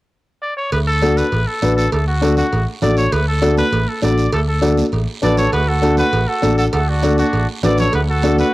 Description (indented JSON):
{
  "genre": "latin, cumbia",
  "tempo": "200 BPM",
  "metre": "4/4",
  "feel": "straight",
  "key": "D major",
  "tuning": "A4 = 440 Hz",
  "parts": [
    { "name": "clear trumpet", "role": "melody", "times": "0.4-8.5 s", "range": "F#4 to D5", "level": "-21 LUFS", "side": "equal", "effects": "cassette tape" },
    { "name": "fingered electric bass", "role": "bass", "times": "0.7-8.4 s", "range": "A1 to D2", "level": "-18 LUFS", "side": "equal", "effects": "none" },
    { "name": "cowbell and timbales", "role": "percussion", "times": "0.7-8.4 s", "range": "none", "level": "-27 LUFS", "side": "right 4 dB", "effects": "none" },
    { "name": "guiro", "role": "percussion", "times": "0.7-8.5 s", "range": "none", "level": "-33 LUFS", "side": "right 5 dB", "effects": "none" },
    { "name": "dark upright piano", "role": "accompaniment", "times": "1.0-8.4 s", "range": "D4 to B4", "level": "-18 LUFS", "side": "left 2 dB", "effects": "cassette tape" },
    { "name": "congas", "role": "percussion", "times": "1.0-8.5 s", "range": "none", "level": "-26 LUFS", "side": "right 5 dB", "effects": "none" },
    { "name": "accordion", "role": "second line", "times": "5.2-8.5 s", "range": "D4 to A4", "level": "-24 LUFS", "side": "right 3 dB", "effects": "cassette tape" }
  ],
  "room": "light reverb, small room ambience",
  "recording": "home recording on cassette",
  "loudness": "-14 LUFS",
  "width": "side -18 dB against mid",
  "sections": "0.7-8.5 A section",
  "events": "none",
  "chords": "0.0 N.C.; 0.7 D"
}